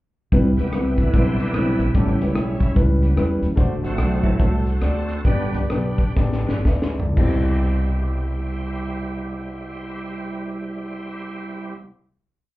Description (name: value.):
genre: uptempo gospel.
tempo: 112-148 BPM.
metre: 4/4.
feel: swing 63% on 8ths.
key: C major.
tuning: A4 = 439 Hz.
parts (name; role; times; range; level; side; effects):
warm concert grand piano; accompaniment; 0.3-11.8 s; C2 to E5; -25 LUFS; left 1 dB; none.
upright bass; bass; 0.3-11.7 s; G1 to E2; -22 LUFS; equal; none.
tight funk drum kit; drums; 0.3-7.3 s; crash cymbal, hi-hat, kick drum, rim click, snare drum, toms; -22 LUFS; equal; none.
bright tonewheel organ; sustained chords; 0.6-11.7 s; C#3 to C5; -27 LUFS; right 2 dB; slow rotary speaker, chorus vibrato.
room: light reverb.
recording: heard muffled through a wall, club ambience, EQ.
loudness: -18 LUFS.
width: side -18 dB against mid.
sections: 0.3-7.2 breakdown; 7.2-11.5 final chord.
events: tonewheel organ solo 0.3-7.2; slowing down 3.6-7.2; drum fill 6.2-7.2; grand piano fill 6.4-7.2.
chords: 0.3 Cmaj7; 1.9 A7; 3.6 D7; 5.2 G; 7.2 Cmaj7.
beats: | 0.32 0.72 1.13 1.54 | 1.95 2.35 2.76 3.17 | 3.57 3.98 4.39 4.81 | 5.25 5.69 6.16 6.65 | 7.17 7.71 8.24 8.78 | 9.31 9.85 10.38 10.92.